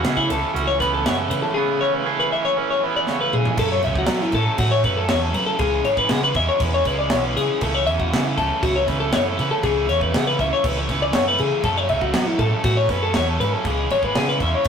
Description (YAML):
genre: math rock and midwest emo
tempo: 119 BPM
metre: 4/4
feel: straight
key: A major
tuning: A4 = 440 Hz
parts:
  - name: twangy electric guitar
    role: accompaniment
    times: 0.0-3.6 s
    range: C#3 to G#4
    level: -26 LUFS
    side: right 8 dB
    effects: none
  - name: twelve-string electric guitar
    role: arpeggios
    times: 0.0-14.7 s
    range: E4 to E5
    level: -21 LUFS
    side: left 3 dB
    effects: none
  - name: overdriven electric guitar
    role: riff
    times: 0.0-14.7 s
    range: F#2 to C#4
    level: -26 LUFS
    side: right 4 dB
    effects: none
  - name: hollow-body short-scale picked electric bass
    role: bass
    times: 0.0-14.7 s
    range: F#1 to F#3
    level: -25 LUFS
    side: right 1 dB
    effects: none
  - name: crisp fusion drum kit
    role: drums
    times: 0.0-14.7 s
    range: crash cymbal, kick drum, ride cymbal, snare drum, toms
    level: -25 LUFS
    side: equal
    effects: none
room: moderate studio reverb, RT60 0.5 s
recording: rough rehearsal-room recording, tube saturation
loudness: -18 LUFS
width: side -7 dB against mid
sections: 0.0-3.6 A section; 3.6-14.7 B section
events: drum fill 3.1-3.6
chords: 0.0 A69; 3.6 F#m7; 5.6 C#m7; 7.6 A69; 11.6 F#m7; 13.7 C#m7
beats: 0.04 0.55 1.06 | 1.56 2.07 2.58 3.08 | 3.59 4.09 4.60 5.10 | 5.61 6.11 6.61 7.12 | 7.62 8.12 8.62 9.13 | 9.63 10.13 10.63 11.14 | 11.64 12.14 12.65 13.15 | 13.65 14.16 14.66